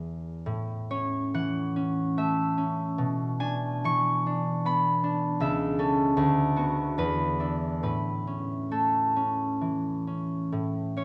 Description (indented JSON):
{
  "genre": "classical, solo harp piece",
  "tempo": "63-79 BPM",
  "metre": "3/4",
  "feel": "rubato",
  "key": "A major",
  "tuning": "A4 = 440 Hz",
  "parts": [
    { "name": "concert harp", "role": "solo", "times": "0.0-11.0 s", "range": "C#2 to C#6", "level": "-28 LUFS", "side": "equal", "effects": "none" }
  ],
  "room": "moderate recital hall reverb, RT60 1.6 s",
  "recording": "worn, warbling old tape, cassette tape, warbly pitch drift",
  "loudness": "-28 LUFS",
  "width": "mono",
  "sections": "0.0-10.5 A section",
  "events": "none",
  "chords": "0.5 A; 3.0 E7/B; 5.4 A/C#; 6.2 Bm/D; 7.0 E5; 7.9 A",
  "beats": "| 0.47 1.36 2.19 | 2.99 3.86 4.66 | 5.42 6.19 7.00 | 7.85 8.73 9.63 | 10.53"
}